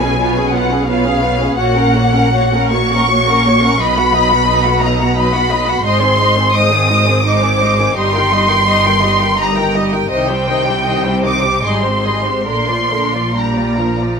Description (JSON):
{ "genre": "classical, slow romantic movement for string orchestra", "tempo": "68-90 BPM", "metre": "3/4", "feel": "rubato", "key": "B major, Eb major from 5.8 s", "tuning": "A4 = 439 Hz", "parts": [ { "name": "warm studio violin section", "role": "melody", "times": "0.0-14.2 s", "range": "E#5 to Eb6", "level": "-15 LUFS", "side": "equal", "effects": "none" }, { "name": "rich studio violin section", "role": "second line", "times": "0.0-14.2 s", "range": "D4 to G5", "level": "-19 LUFS", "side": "left 1 dB", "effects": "none" }, { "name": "rich studio viola section", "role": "accompaniment", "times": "0.0-14.2 s", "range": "D3 to A#4", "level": "-19 LUFS", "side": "equal", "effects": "none" }, { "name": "clear studio double bass section", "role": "bass", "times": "0.0-14.2 s", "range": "G1 to C2", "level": "-20 LUFS", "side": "right 2 dB", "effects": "none" }, { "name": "rich studio cello section", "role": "bass", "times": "0.0-14.2 s", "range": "G2 to C3", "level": "-20 LUFS", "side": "equal", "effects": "none" } ], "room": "moderate studio reverb, RT60 0.8 s", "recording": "minimal, uncompressed stereo recording", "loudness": "-11 LUFS", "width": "side -6 dB against mid", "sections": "0.0-14.2 A section", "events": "none", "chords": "0.0 C#7/B; 1.6 F#/A#; 3.8 B; 5.8 Ab; 8.0 Eb/G; 10.1 Cm; 11.6 Abmaj7; 12.5 Bb", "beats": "0.17 0.87 | 1.57 2.33 3.10 | 3.80 4.47 5.16 | 5.84 6.53 7.25 | 7.96 8.68 9.40 | 10.12 10.84 11.63 | 12.47 13.35" }